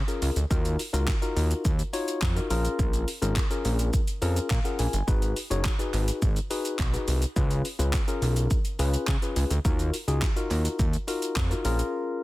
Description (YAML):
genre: dance-pop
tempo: 105 BPM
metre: 4/4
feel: straight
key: unclear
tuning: A4 = 437 Hz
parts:
  - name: fat analog bass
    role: bass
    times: 0.0-11.8 s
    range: F#1 to C#3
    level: -26 LUFS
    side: equal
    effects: sidechain pumping
  - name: tine electric piano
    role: accompaniment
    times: 0.1-12.2 s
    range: C#4 to G#5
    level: -31 LUFS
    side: left 3 dB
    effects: sidechain pumping
  - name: pop drum kit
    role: drums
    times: 0.1-11.9 s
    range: handclaps, hi-hat, kick drum, shaker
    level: -28 LUFS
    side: equal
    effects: none
  - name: group handclap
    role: percussion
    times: 5.7-11.5 s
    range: none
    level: -44 LUFS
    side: right 6 dB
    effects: none
room: little or no reverb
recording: dense, heavily limited modern master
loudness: -24 LUFS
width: side -18 dB against mid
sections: 0.0-12.2 A section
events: tine electric piano fill 4.2-5.1; break 11.9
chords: 0.0 C#; 0.5 D#madd9; 2.5 A#m7; 5.1 G#m7; 7.4 C#7; 9.7 D#madd9; 11.7 A#m7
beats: | 0.51 1.08 1.65 2.22 | 2.79 3.36 3.94 4.51 | 5.08 5.65 6.22 6.79 | 7.36 7.93 8.51 9.08 | 9.65 10.22 10.79 11.36 | 11.94